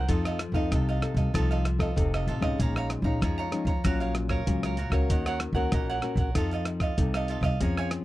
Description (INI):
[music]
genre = samba and choro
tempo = 96 BPM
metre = 4/4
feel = straight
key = unclear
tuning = A4 = 440 Hz
[part]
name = cavaquinho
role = accompaniment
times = 0.0-7.9 s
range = Eb4 to Bb5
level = -33 LUFS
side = right 5 dB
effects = none
[part]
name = nylon-string guitar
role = accompaniment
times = 0.0-8.0 s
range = Bb2 to Bb4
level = -31 LUFS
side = left 4 dB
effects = none
[part]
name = upright bass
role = bass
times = 0.0-8.0 s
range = F1 to F2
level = -29 LUFS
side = equal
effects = none
[part]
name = dusty soul sampler-style drum kit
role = drums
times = 0.1-8.0 s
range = hi-hat, kick drum, rim click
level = -29 LUFS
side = equal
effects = none
[sound]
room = little or no reverb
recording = dry, close 1970s-style studio recording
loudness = -25 LUFS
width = side -16 dB against mid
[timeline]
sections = 0.0-8.0 A section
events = none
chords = 0.1 F7; 2.6 Bbm7; 3.8 Gbmaj7/Bb; 5.1 Ebm7; 6.4 F7